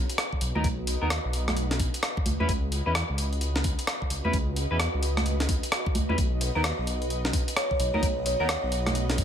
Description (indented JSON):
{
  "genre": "UK garage, two-step garage",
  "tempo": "130 BPM",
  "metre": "4/4",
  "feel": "swing 63% on 16ths",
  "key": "B major",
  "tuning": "A4 = 440 Hz",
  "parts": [
    { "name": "dark detuned saw bass", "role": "bass", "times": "0.0-9.2 s", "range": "B1 to E2", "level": "-29 LUFS", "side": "equal", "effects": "none" },
    { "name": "granular cloud pad", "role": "texture", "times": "0.0-9.2 s", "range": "F#4 to D#5", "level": "-36 LUFS", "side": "equal", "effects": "built-in reverb, sidechain pumping" },
    { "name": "breakbeat sampler-style drum kit", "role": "drums", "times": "0.1-9.2 s", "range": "congas, hi-hat, rim click, snare drum", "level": "-29 LUFS", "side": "right 1 dB", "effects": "none" },
    { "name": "electronic kick drum", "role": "drums", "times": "0.3-9.2 s", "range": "none", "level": "-28 LUFS", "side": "equal", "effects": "overdrive" },
    { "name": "clean electric guitar", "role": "stabs", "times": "0.6-8.5 s", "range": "B3 to B4", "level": "-32 LUFS", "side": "left 1 dB", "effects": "ensemble chorus, dub echo" },
    { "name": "buzzing kalimba", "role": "melody", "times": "6.4-8.6 s", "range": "B4 to F#5", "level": "-32 LUFS", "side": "right 1 dB", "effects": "dub echo" }
  ],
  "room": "light reverb",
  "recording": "none",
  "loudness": "-24 LUFS",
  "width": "side -9 dB against mid",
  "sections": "0.0-9.2 A section",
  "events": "none",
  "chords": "0.0 B; 2.3 C#m7; 6.2 B",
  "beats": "0.18 | 0.64 1.10 1.57 2.03 | 2.49 2.95 3.41 3.87 | 4.33 4.80 5.26 5.72 | 6.18 6.64 7.10 7.57 | 8.03 8.49 8.95"
}